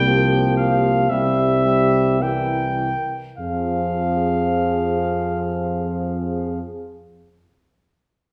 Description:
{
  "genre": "classical, hymn-like piece for brass band",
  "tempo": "48-61 BPM",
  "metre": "4/4",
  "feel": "rubato",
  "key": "F minor",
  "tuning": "A4 = 440 Hz",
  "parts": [
    { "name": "warm cornet", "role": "melody", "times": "0.0-6.6 s", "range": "E5 to G5", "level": "-25 LUFS", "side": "equal", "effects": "none" },
    { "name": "warm French horn section", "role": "second line", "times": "0.0-6.6 s", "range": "G4 to Bb4", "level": "-28 LUFS", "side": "equal", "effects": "none" },
    { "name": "brilliant trombone", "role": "accompaniment", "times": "0.0-6.6 s", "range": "E3 to G3", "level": "-30 LUFS", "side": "equal", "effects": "none" },
    { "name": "mellow euphonium", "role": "accompaniment", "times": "0.0-6.6 s", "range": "G3 to C4", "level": "-30 LUFS", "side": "equal", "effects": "none" },
    { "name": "mellow tuba", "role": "bass", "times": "0.0-6.6 s", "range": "C2 to F2", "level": "-25 LUFS", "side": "equal", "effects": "none" }
  ],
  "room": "wet recital hall reverb, RT60 1.3 s",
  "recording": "recorded in a church or concert hall",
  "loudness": "-20 LUFS",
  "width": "mono",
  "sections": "0.0-3.4 A section; 3.4-7.9 B section",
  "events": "slowing down 0.0-3.4",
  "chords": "0.0 C7sus4; 1.1 C7; 3.4 Fm",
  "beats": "0.07 1.10 2.21 | 3.40 4.52 5.65"
}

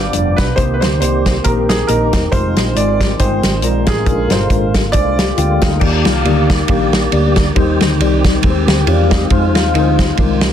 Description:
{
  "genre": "uptempo gospel",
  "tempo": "138 BPM",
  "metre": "4/4",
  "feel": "swing 56% on 8ths",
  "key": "Eb major",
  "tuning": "A4 = 440 Hz",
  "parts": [
    { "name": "bright concert grand piano", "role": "melody", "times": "0.0-5.6 s", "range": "Ab4 to D5", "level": "-20 LUFS", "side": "right 4 dB", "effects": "none" },
    { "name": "concert harp", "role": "melody", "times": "0.0-10.5 s", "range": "G3 to D5", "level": "-20 LUFS", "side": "left 5 dB", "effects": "tape echo" },
    { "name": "mellow tine electric piano", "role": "accompaniment", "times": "0.0-10.5 s", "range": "G2 to G5", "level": "-19 LUFS", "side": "left 2 dB", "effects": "medium stereo tremolo" },
    { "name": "percussive tonewheel organ", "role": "sustained chords", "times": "0.0-10.5 s", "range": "D3 to D5", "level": "-22 LUFS", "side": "right 2 dB", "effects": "slow rotary speaker, chorus vibrato" },
    { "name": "hollow-body short-scale fingered electric bass", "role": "bass", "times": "0.0-10.5 s", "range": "F1 to F2", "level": "-17 LUFS", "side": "equal", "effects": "none" },
    { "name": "warm soul drum kit", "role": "drums", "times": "0.1-10.5 s", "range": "crash cymbal, hi-hat, kick drum, ride cymbal, snare drum", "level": "-16 LUFS", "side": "equal", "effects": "none" }
  ],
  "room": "light reverb, small room ambience",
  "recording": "dense, heavily limited modern master",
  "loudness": "-11 LUFS",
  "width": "side -9 dB against mid",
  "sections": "0.0-5.8 A section; 5.8-10.5 B section",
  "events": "none",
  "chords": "0.0 G7; 0.6 Cm7; 2.3 Fm7; 4.1 Bb7; 5.8 Ebmaj7; 7.6 Abmaj7; 9.3 Fm7",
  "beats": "0.14 | 0.58 1.01 1.45 1.89 | 2.32 2.76 3.19 3.63 | 4.07 4.50 4.94 5.38 | 5.82 6.25 6.69 7.12 | 7.56 8.00 8.44 8.87 | 9.31 9.74 10.18"
}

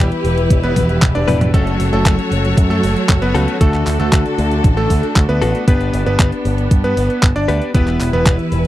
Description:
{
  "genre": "italo disco",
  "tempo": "116 BPM",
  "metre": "4/4",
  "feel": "straight",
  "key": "E dorian",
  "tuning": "A4 = 440 Hz",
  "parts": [
    { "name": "bright electric grand piano", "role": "melody", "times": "0.0-8.3 s", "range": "A3 to D5", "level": "-20 LUFS", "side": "right 1 dB", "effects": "tape echo" },
    { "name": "bright studio string section", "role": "sustained chords", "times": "0.0-8.7 s", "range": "D3 to C#5", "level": "-21 LUFS", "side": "right 1 dB", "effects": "none" },
    { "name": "direct-recorded clean electric guitar", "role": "stabs", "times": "0.0-8.7 s", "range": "A3 to B4", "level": "-23 LUFS", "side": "left 6 dB", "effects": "none" },
    { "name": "picked electric bass with an envelope filter", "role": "bass", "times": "0.0-8.7 s", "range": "E1 to G2", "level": "-18 LUFS", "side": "equal", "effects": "none" },
    { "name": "clean 12-bit digital drum machine", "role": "drums", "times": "0.1-8.7 s", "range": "handclaps, hi-hat, toms", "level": "-21 LUFS", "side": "equal", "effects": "overdrive" },
    { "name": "electronic kick drum", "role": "drums", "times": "0.5-8.4 s", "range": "none", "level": "-13 LUFS", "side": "equal", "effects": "overdrive" }
  ],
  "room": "little or no reverb",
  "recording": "dry, close 1970s-style studio recording",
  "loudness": "-12 LUFS",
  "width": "side -14 dB against mid",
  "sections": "0.0-8.7 A section",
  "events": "drum fill 0.8-1.5",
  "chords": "0.0 Em; 1.5 F#m; 3.6 D; 5.7 G; 7.7 Em",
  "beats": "0.51 1.02 | 1.54 2.06 2.57 3.09 | 3.61 4.13 4.64 5.16 | 5.68 6.19 6.71 7.23 | 7.75 8.26"
}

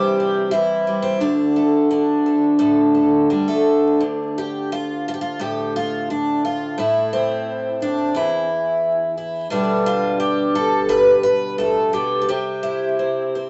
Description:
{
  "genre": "folk, solo fingerstyle acoustic guitar",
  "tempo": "87 BPM",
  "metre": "4/4",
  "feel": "rubato",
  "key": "D dorian",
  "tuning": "A4 = 441 Hz",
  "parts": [
    { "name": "picked twelve-string acoustic guitar", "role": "solo", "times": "0.0-13.5 s", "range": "D2 to B4", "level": "-19 LUFS", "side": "equal", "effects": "none" }
  ],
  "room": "light reverb",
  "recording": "vinyl crackle, nothing above 8.0 kHz",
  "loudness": "-19 LUFS",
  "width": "mono",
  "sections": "0.0-4.0 A section; 4.0-13.5 B section",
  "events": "none",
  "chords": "0.0 C; 1.2 D5; 6.8 Am; 9.5 G/B; 12.3 C",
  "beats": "0.52 | 1.20 1.89 2.59 3.29 | 4.00 4.71 5.41 6.10 | 6.78 7.47 8.15 8.83 | 9.51 10.20 10.89 11.59 | 12.28 12.98"
}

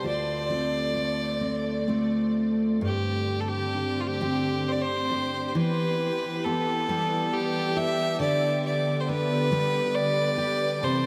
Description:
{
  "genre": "celtic folk, Celtic slow air",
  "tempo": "67 BPM",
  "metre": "3/4",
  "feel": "rubato",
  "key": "unclear",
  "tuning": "A4 = 439 Hz",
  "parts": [
    { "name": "clear fiddle", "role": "melody", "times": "0.0-11.1 s", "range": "F4 to E5", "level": "-30 LUFS", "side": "equal", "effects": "tape echo" },
    { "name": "picked steel-string acoustic guitar", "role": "accompaniment", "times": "0.0-11.1 s", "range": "D2 to G4", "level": "-30 LUFS", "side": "equal", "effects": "none" },
    { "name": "dark studio string section", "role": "sustained chords", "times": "2.8-11.1 s", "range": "D3 to A4", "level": "-35 LUFS", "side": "equal", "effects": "none" }
  ],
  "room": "wet huge ambient reverb, RT60 7.4 s",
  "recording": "dreamy mix soaked in reverb",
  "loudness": "-26 LUFS",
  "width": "mono",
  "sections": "0.0-2.8 A section; 2.8-11.1 B section",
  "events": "none",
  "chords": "0.0 Dm7; 2.8 Gsus4; 5.6 Em; 8.2 G/D",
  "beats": "| 0.04 0.94 1.87 | 2.82 3.74 4.65 | 5.55 6.44 7.32 | 8.20 9.08 9.95 | 10.82"
}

